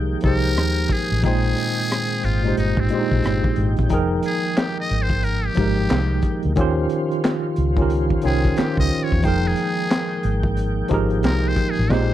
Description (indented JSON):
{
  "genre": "R&B, neo-soul",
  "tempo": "90 BPM",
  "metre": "4/4",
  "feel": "swing 63% on 16ths",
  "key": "F minor",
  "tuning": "A4 = 440 Hz",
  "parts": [
    { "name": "tine electric piano", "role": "accompaniment", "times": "0.0-12.1 s", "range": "Bb2 to G5", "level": "-22 LUFS", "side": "right 1 dB", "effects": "medium stereo tremolo" },
    { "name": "tonewheel organ", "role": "sustained chords", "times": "0.0-12.1 s", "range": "Eb3 to G5", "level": "-30 LUFS", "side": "left 1 dB", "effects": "slow rotary speaker, chorus vibrato" },
    { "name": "vintage muted fingered electric bass", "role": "bass", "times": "0.0-12.1 s", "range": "F1 to E2", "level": "-22 LUFS", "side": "equal", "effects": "none" },
    { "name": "crunchy breakbeat drum kit", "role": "drums", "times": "0.2-12.1 s", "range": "crash cymbal, handclaps, hi-hat, kick drum, rim click, snare drum", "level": "-23 LUFS", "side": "equal", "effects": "none" },
    { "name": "trumpet with metal mute", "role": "melody", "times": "0.3-12.1 s", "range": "C4 to Eb5", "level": "-26 LUFS", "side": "left 1 dB", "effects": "slapback echo" }
  ],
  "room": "little or no reverb",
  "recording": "dry, close 1970s-style studio recording",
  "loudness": "-18 LUFS",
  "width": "side -12 dB against mid",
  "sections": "0.0-12.1 A section",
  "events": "muted trumpet solo 0.0-12.1; band accent 11.9",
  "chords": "0.0 Fm11; 1.2 Bb13sus4; 3.9 Fm11; 6.6 Eb13; 9.2 Fm11"
}